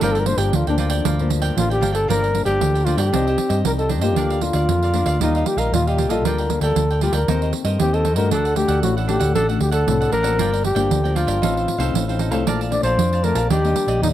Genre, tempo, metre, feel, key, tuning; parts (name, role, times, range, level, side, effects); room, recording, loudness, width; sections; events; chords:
samba and choro; 116 BPM; 4/4; straight; G minor; A4 = 440 Hz
breathy trumpet; melody; 0.0-14.1 s; D4 to D5; -22 LUFS; left 1 dB
cavaquinho; accompaniment; 0.0-14.1 s; D4 to A5; -28 LUFS; right 4 dB
nylon-string guitar; accompaniment; 0.0-14.1 s; F2 to D5; -25 LUFS; left 6 dB
hollow-body short-scale fingered electric bass; bass; 0.0-14.1 s; G1 to G2; -21 LUFS; equal
pandeiro; percussion; 0.0-14.1 s; -26 LUFS; right 10 dB
small room ambience; dry, close 1970s-style studio recording; -17 LUFS; side -12 dB against mid
0.0-2.1 A section; 2.1-14.1 B section
trumpet solo 0.0-2.1
0.0 Gm7; 3.1 Cmadd9; 4.2 Bb/D; 5.2 Ebadd9; 6.2 Gm7/D; 7.3 Cm7/Eb; 8.3 D; 10.4 Gm7; 11.4 F7/A; 12.5 Bbmaj7; 13.5 Ebmaj7